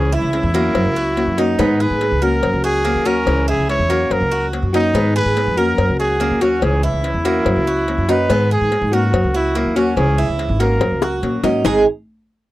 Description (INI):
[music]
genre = latin, Cuban son and guajira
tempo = 143 BPM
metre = 4/4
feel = straight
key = unclear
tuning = A4 = 441 Hz
[part]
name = warm trumpet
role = melody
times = 0.0-11.9 s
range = D#4 to C#5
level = -20 LUFS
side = equal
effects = none
[part]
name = nylon-string guitar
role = accompaniment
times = 0.0-11.8 s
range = G#2 to G#4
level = -20 LUFS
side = left 2 dB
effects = none
[part]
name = Cuban tres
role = arpeggios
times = 0.0-11.8 s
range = G#3 to A#4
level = -23 LUFS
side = right 5 dB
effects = none
[part]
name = upright bass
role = bass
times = 0.0-11.8 s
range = G#1 to A#2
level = -20 LUFS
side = equal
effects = none
[part]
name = cowbell and bongos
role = percussion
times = 0.3-11.7 s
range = none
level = -24 LUFS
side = left 6 dB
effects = none
[sound]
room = light reverb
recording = dry, close 1970s-style studio recording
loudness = -14 LUFS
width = side -16 dB against mid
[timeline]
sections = 0.0-11.6 A section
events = drum fill 10.8-11.6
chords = 0.0 C#m; 0.8 F#; 1.6 G#m; 2.4 F#; 3.3 C#m; 4.1 F#; 4.9 G#m; 5.8 F#; 6.6 C#m; 7.5 F#; 8.3 G#m; 9.1 F#; 10.0 C#m; 10.8 F#; 11.6 G#